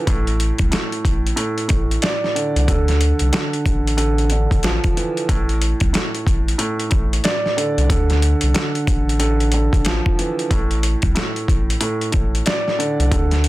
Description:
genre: hip hop, boom-bap hip-hop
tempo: 92 BPM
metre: 4/4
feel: swing 62% on 16ths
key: A minor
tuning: A4 = 441 Hz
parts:
  - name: dark concert grand piano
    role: accompaniment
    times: 0.0-13.5 s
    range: A2 to D5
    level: -22 LUFS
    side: right 2 dB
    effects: cassette tape, high-pass filter, low-pass filter
  - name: warm sub bass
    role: bass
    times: 0.1-13.5 s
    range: A1 to D2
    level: -19 LUFS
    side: equal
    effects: none
  - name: dusty soul sampler-style drum kit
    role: drums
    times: 0.1-13.5 s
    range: hi-hat, kick drum, snare drum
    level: -20 LUFS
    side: equal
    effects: overdrive
room: light reverb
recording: dense, heavily limited modern master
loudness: -16 LUFS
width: side -17 dB against mid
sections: 0.0-13.5 A section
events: none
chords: 0.1 Asus4; 2.7 Dmadd9; 5.3 Asus4; 7.9 Dmadd9; 10.5 Asus4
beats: | 0.07 0.72 1.38 2.03 | 2.68 3.33 3.98 4.64 | 5.29 5.94 6.59 7.25 | 7.90 8.55 9.20 9.86 | 10.51 11.16 11.81 12.46 | 13.12

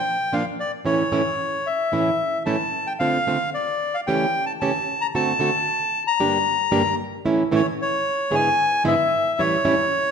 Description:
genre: tango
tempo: 112 BPM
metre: 4/4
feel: rubato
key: unclear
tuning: A4 = 440 Hz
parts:
  - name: bandoneon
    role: melody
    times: 0.0-10.1 s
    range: C#5 to Bb5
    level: -21 LUFS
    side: left 2 dB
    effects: none
  - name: nylon-string guitar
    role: accompaniment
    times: 0.3-9.7 s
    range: G2 to G#4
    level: -23 LUFS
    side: right 2 dB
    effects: none
room: moderate recital hall reverb, RT60 1.4 s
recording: minimal, uncompressed stereo recording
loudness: -19 LUFS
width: side -6 dB against mid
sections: 0.0-10.1 A section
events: none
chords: 0.0 Bb; 0.9 A; 3.0 Dm7; 4.1 A7/C#; 5.2 D7; 6.2 Gm; 7.3 A; 8.3 E7/G#; 9.4 A7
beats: 0.33 | 0.86 1.39 1.92 2.46 | 3.01 3.55 4.08 4.62 | 5.15 5.68 6.21 6.73 | 7.26 7.79 8.32 8.86 | 9.39 9.93

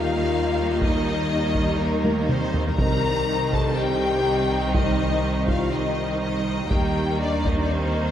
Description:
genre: cinematic, epic orchestral film score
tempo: 122 BPM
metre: 4/4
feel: straight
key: C minor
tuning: A4 = 440 Hz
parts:
  - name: warm symphonic violin section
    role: melody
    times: 0.0-8.1 s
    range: Bb4 to Bb5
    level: -28 LUFS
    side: left 5 dB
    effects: none
  - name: rich symphonic violin section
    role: second line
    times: 0.0-8.1 s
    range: Bb3 to Eb4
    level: -30 LUFS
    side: left 1 dB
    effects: none
  - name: rich symphonic viola section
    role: accompaniment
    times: 0.0-8.1 s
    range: Eb3 to G3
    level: -29 LUFS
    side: right 2 dB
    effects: none
  - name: mellow French horn section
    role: sustained chords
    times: 0.0-8.1 s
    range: Bb3 to Bb4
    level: -27 LUFS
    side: left 4 dB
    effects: none
  - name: rich symphonic cello section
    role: bass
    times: 0.0-8.1 s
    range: C2 to Eb2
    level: -29 LUFS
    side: right 3 dB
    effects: none
  - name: rich symphonic double bass section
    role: bass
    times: 0.0-8.1 s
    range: C2 to Eb2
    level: -29 LUFS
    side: right 2 dB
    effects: none
  - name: solo taiko drums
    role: drums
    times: 0.8-7.9 s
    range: none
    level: -26 LUFS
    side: equal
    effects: none
  - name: timpani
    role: percussion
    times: 2.8-3.5 s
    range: C3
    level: -31 LUFS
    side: right 2 dB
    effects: none
room: wet scoring stage reverb, RT60 1.9 s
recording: none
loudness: -20 LUFS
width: side -10 dB against mid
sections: 0.0-8.1 A section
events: drum fill 2.0-2.8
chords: 0.0 Eb; 2.8 Cm; 6.7 Eb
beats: 0.32 | 0.82 1.31 1.80 2.29 | 2.79 3.28 3.77 4.26 | 4.75 5.24 5.73 6.22 | 6.71 7.20 7.70

